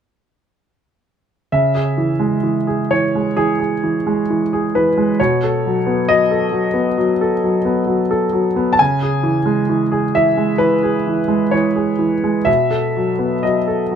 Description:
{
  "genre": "neoclassical minimalist piano",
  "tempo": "66 BPM",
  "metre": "4/4",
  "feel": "rubato",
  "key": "C# minor",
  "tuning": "A4 = 440 Hz",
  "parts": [
    { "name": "clear baby grand piano", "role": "solo", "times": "1.5-14.0 s", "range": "B2 to A5", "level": "-14 LUFS", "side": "equal", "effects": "none" }
  ],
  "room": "light reverb",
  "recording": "none",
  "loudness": "-14 LUFS",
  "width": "side -8 dB against mid",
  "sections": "1.5-14.0 A section",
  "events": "none",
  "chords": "1.5 C#m; 5.2 B7; 8.8 C#m; 12.5 B7",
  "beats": "| 1.51 2.44 3.36 4.28 | 5.18 6.08 6.98 7.88 | 8.79 9.69 10.59 11.52 | 12.47 13.44"
}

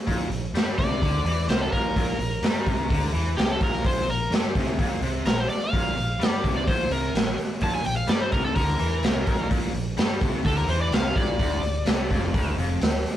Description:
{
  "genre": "blues rock power trio and southern rock",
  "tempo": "127 BPM",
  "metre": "4/4",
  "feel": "straight",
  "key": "unclear",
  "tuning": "A4 = 440 Hz",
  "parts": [
    { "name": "overdriven electric guitar", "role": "riff", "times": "0.1-13.0 s", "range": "D2 to G3", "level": "-30 LUFS", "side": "equal", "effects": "none" },
    { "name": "vintage muted fingered electric bass", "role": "bass", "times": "0.1-13.0 s", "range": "D1 to G2", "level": "-29 LUFS", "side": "equal", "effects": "none" },
    { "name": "raw garage drum kit", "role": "drums", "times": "0.1-13.2 s", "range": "hi-hat, kick drum, snare drum", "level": "-24 LUFS", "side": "equal", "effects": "none" },
    { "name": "overdriven slide guitar", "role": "melody", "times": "0.8-12.5 s", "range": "G4 to A5", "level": "-28 LUFS", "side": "left 1 dB", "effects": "none" }
  ],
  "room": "light reverb",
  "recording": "rough rehearsal-room recording, warm saturation",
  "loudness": "-22 LUFS",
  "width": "side -12 dB against mid",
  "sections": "0.0-13.2 A section",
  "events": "electric slide guitar solo 0.0-13.2",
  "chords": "0.1 Bb5; 11.4 Dm",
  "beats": "| 0.07 0.54 1.01 1.48 | 1.95 2.42 2.90 3.37 | 3.84 4.31 4.79 5.26 | 5.73 6.20 6.67 7.15 | 7.62 8.09 8.56 9.04 | 9.51 9.98 10.45 10.92 | 11.39 11.87 12.34 12.81"
}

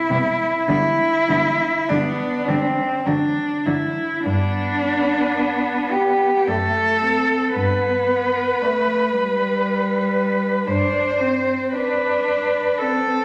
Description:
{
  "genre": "classical, lyrical piece for cello ensemble",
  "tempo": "49-59 BPM",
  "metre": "3/4",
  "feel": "rubato",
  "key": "G major",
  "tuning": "A4 = 440 Hz",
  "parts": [
    { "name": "rich cello", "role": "melody", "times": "0.0-13.2 s", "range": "D4 to D5", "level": "-23 LUFS", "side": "equal", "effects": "none" },
    { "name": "warm cello", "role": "second line", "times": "0.1-13.2 s", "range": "B3 to C5", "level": "-22 LUFS", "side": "equal", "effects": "none" },
    { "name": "warm cello", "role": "accompaniment", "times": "0.1-13.2 s", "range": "F#3 to D4", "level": "-27 LUFS", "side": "equal", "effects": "none" },
    { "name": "warm cello", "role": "bass", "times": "0.1-11.5 s", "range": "F#2 to D3", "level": "-27 LUFS", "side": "equal", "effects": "none" }
  ],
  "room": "wet recital hall reverb, RT60 1.5 s",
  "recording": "none",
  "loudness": "-20 LUFS",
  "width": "mono",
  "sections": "0.0-4.2 A section; 4.2-13.2 B section",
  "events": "none",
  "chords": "0.0 C; 0.7 G/D; 3.1 D; 4.2 G; 6.5 D7/F#; 7.6 G",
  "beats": "| 0.68 1.89 3.06 | 4.25 5.35 6.47 | 7.55 8.61 9.64 | 10.67 11.74 12.80"
}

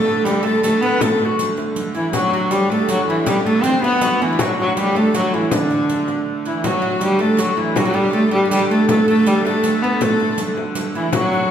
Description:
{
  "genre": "medieval dance",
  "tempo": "107 BPM (dotted quarters)",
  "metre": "6/8",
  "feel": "straight",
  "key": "D major",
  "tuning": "A4 = 439 Hz",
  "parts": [
    { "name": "rich viola da gamba", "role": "melody", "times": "0.0-11.5 s", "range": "D3 to C4", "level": "-18 LUFS", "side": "right 1 dB", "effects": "none" },
    { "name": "bright reedy bass recorder", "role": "second line", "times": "0.0-11.5 s", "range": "D4 to C5", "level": "-23 LUFS", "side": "left 5 dB", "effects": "none" },
    { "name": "oud", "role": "second line", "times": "0.0-11.5 s", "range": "D4 to C5", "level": "-24 LUFS", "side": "right 1 dB", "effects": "none" },
    { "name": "rich hurdy-gurdy", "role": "drone", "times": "0.0-11.5 s", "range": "D3 to A3", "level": "-26 LUFS", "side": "right 3 dB", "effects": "none" },
    { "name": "riq", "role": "percussion", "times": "0.3-11.3 s", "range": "none", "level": "-28 LUFS", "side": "right 3 dB", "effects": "none" },
    { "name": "frame drum", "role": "percussion", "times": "0.4-11.3 s", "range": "none", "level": "-26 LUFS", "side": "left 3 dB", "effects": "none" }
  ],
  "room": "wet recital hall reverb, RT60 1.4 s",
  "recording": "recorded in a church or concert hall",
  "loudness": "-15 LUFS",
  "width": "side -9 dB against mid",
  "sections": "0.0-6.6 A section; 6.6-11.5 A section",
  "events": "none",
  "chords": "none",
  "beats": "0.45 | 1.01 1.57 | 2.14 2.70 | 3.26 3.83 | 4.39 4.95 | 5.51 6.08 | 6.64 7.20 | 7.76 8.32 | 8.89 9.45 | 10.01 10.57 | 11.13"
}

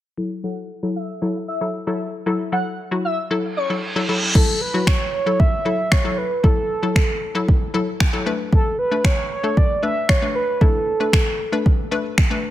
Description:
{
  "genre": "dance-pop",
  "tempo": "115 BPM",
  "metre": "4/4",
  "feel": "straight",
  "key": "F# minor",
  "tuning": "A4 = 438 Hz",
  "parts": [
    { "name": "hollow square pluck", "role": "accompaniment", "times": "0.2-12.5 s", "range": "F#3 to B4", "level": "-24 LUFS", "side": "left 3 dB", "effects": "chorus, sidechain pumping, low-pass filter" },
    { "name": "airy dreamy lead", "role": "melody", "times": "0.4-3.7 s", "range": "C#5 to F#5", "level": "-27 LUFS", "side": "equal", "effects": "chorus, sidechain pumping, low-pass filter, tape echo" },
    { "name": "reverse cymbal", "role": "sound effects", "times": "3.6-4.4 s", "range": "none", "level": "-25 LUFS", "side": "right 2 dB", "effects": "none" },
    { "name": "mellow horn-like synth lead", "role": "melody", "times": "4.3-11.7 s", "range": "A4 to E5", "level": "-23 LUFS", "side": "right 2 dB", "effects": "chorus, tape echo" },
    { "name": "smooth R&B drum kit", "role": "drums", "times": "4.4-12.3 s", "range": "crash cymbal, finger snaps, kick drum", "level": "-17 LUFS", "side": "equal", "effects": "none" }
  ],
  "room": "digital ambience",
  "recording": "none",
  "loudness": "-18 LUFS",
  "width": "side -13 dB against mid",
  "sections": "0.2-4.4 A section; 4.4-12.5 B section",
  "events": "filter sweep 0.2-4.4; reverse cymbal 3.6-4.4",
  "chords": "0.2 F#m7; 8.3 Bm7",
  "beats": "| 0.18 0.70 1.22 1.74 | 2.26 2.79 3.31 3.83 | 4.35 4.87 5.39 5.92 | 6.44 6.96 7.48 8.00 | 8.53 9.05 9.57 10.09 | 10.61 11.13 11.66 12.18"
}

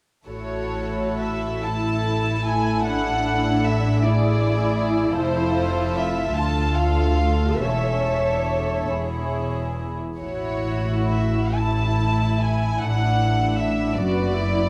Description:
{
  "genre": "classical, slow romantic movement for string orchestra",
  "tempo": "41-53 BPM (dotted quarters)",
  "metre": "6/8",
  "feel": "rubato",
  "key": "A major",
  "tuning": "A4 = 440 Hz",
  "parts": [
    { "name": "warm studio violin section", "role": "melody", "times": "0.3-14.7 s", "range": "C5 to A5", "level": "-29 LUFS", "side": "equal", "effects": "none" },
    { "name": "warm symphonic violin section", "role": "second line", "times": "0.3-14.7 s", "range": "B3 to A4", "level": "-31 LUFS", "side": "equal", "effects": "none" },
    { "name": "dark symphonic viola section", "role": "accompaniment", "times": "0.3-14.7 s", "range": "D4 to C#5", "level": "-30 LUFS", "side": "equal", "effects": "none" },
    { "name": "dark symphonic double bass section", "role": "bass", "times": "0.3-14.7 s", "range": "E1 to D2", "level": "-28 LUFS", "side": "equal", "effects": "none" },
    { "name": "rich symphonic cello section", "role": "bass", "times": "0.3-14.7 s", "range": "D2 to A2", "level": "-29 LUFS", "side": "equal", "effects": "none" }
  ],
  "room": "moderate concert hall reverb, RT60 2.6 s",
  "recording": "none",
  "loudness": "-22 LUFS",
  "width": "mono",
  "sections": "0.3-14.7 A section",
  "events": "none",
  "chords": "0.3 A; 2.9 E7/A; 5.2 F; 6.4 Dm; 7.6 A/E; 10.2 A; 12.8 E5/A",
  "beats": "| 0.28 1.66 | 2.86 4.03 | 5.17 6.36 | 7.62 8.90 | 10.20 11.58 | 12.82 13.96"
}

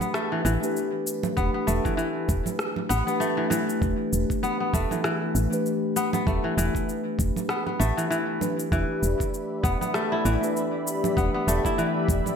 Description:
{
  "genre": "organic downtempo",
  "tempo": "98 BPM",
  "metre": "4/4",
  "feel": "swing 57% on 16ths",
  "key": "E minor",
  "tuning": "A4 = 440 Hz",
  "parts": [
    { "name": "muted felt-like synth keys", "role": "accompaniment", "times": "0.0-12.4 s", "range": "E3 to B4", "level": "-29 LUFS", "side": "equal", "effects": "chorus, sidechain pumping, digital delay" },
    { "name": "kora", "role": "arpeggios", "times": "0.0-12.4 s", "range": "E3 to E4", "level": "-27 LUFS", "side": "left 2 dB", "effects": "digital delay" },
    { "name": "electronic congas, cabasa and rim click", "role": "drums", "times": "0.0-12.4 s", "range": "none", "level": "-31 LUFS", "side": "right 2 dB", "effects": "gated reverb" },
    { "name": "woody FM bass", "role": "bass", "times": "0.4-12.2 s", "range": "E1 to A1", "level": "-25 LUFS", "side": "right 1 dB", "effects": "sidechain pumping" },
    { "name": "electronic kick drum", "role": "drums", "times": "1.4-12.2 s", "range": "none", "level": "-29 LUFS", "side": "right 1 dB", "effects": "none" },
    { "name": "warm analog pad", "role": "sustained chords", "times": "8.7-12.4 s", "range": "G4 to B5", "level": "-30 LUFS", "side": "left 3 dB", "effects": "chorus, sidechain pumping" }
  ],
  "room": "wet plate reverb, RT60 1.4 s, digital ambience",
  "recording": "bright 1980s-style digital production",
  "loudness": "-23 LUFS",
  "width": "side -7 dB against mid",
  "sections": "0.0-12.4 A section",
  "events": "none",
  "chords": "0.0 Em7",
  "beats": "0.14 0.76 | 1.37 1.98 2.59 3.21 | 3.82 4.43 5.04 5.66 | 6.27 6.88 7.49 8.10 | 8.72 9.33 9.94 10.55 | 11.17 11.78"
}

